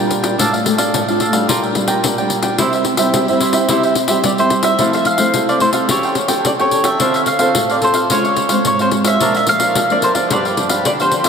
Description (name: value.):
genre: samba and choro.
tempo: 109 BPM.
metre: 4/4.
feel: straight.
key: F major.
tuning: A4 = 440 Hz.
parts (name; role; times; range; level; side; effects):
cavaquinho; accompaniment; 0.0-11.3 s; D4 to G5; -19 LUFS; right 2 dB; none.
nylon-string guitar; accompaniment; 0.0-11.3 s; G2 to A4; -18 LUFS; equal; analog chorus.
pandeiro; percussion; 0.1-11.3 s; none; -19 LUFS; left 4 dB; none.
mandolin; melody; 4.3-11.3 s; C5 to F5; -16 LUFS; equal; diffuse ambient delay.
room: wet huge ambient reverb, RT60 4.1 s.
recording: dreamy mix soaked in reverb.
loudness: -13 LUFS.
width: side -6 dB against mid.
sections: 0.0-4.8 A section; 4.8-11.3 B section.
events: none.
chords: 0.4 Dm/A; 1.5 Gm7/Bb; 2.6 C; 4.8 Fmaj7; 5.9 A7/E; 7.0 Dm7; 8.1 Dbmaj7; 9.2 Bb; 10.3 G7.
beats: | 0.39 0.94 1.49 2.04 | 2.59 3.14 3.69 4.24 | 4.79 5.35 5.90 6.45 | 7.00 7.55 8.10 8.65 | 9.21 9.76 10.31 10.86.